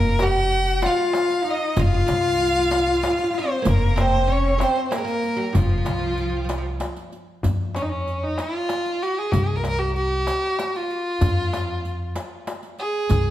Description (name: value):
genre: Arabic maqam ensemble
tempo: 95 BPM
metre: 3/4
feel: straight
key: F maqam bayati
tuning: A4 = 440 Hz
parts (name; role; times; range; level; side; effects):
- clear violin; melody; 0.0-13.3 s; Db4 to Gb5+44c; -24 LUFS; equal; none
- oud; second line; 0.0-6.7 s; F3 to Gb4+50c; -29 LUFS; right 4 dB; none
- rich cello; second line; 0.0-6.8 s; F3 to G4-49c; -24 LUFS; left 2 dB; none
- upright bass; bass; 0.0-13.3 s; F1 to F2; -24 LUFS; equal; none
- darbuka; percussion; 0.2-13.2 s; none; -27 LUFS; left 2 dB; none
- riq; percussion; 0.2-13.2 s; none; -34 LUFS; right 4 dB; none
room: moderate scoring stage reverb, RT60 1.4 s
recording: dark, warm production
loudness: -20 LUFS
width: side -13 dB against mid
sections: 0.0-7.4 A section; 7.4-13.3 B section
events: none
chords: none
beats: 0.52 1.15 | 1.78 2.40 3.03 | 3.66 4.29 4.92 | 5.55 6.18 6.81 | 7.43 8.06 8.69 | 9.32 9.95 10.58 | 11.21 11.84 12.47 | 13.10